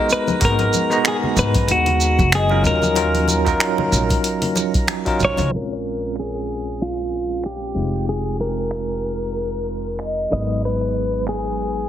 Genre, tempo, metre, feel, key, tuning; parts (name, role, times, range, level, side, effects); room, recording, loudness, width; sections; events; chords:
sunset chillout; 94 BPM; 4/4; swing 57% on 16ths; Bb minor; A4 = 441 Hz
clean electric guitar; melody; 0.0-11.9 s; F4 to Eb5; -23 LUFS; left 1 dB; spring reverb, ping-pong delay
bell-like tine electric piano; accompaniment; 0.0-11.9 s; Gb3 to Bb5; -23 LUFS; moving between left 2 dB and right 5 dB; medium stereo tremolo, auto-pan, ping-pong delay
concert harp; arpeggios; 0.0-11.9 s; G4 to Db6; -30 LUFS; left 1 dB
drifting glass-harmonics texture; texture; 0.0-5.5 s; Bb5; -34 LUFS; right 6 dB; chorus, built-in reverb
deep house drum kit; drums; 0.1-11.4 s; finger snaps, hi-hat, shaker; -24 LUFS; right 1 dB
congas; percussion; 0.1-5.5 s; -28 LUFS; left 3 dB
upright bass; bass; 0.4-11.9 s; F1 to Ab2; -24 LUFS; equal
electronic kick drum; drums; 0.4-5.2 s; -21 LUFS; equal
light reverb; heavily compressed radio sound, multiband compression, low-pass filter; -17 LUFS; side -11 dB against mid
0.0-5.5 A section; 5.5-11.9 B section
filter sweep 5.5-11.9
0.1 Abm9; 2.6 Ebm9; 5.5 Bbm9; 7.8 Fm9; 10.3 Abm7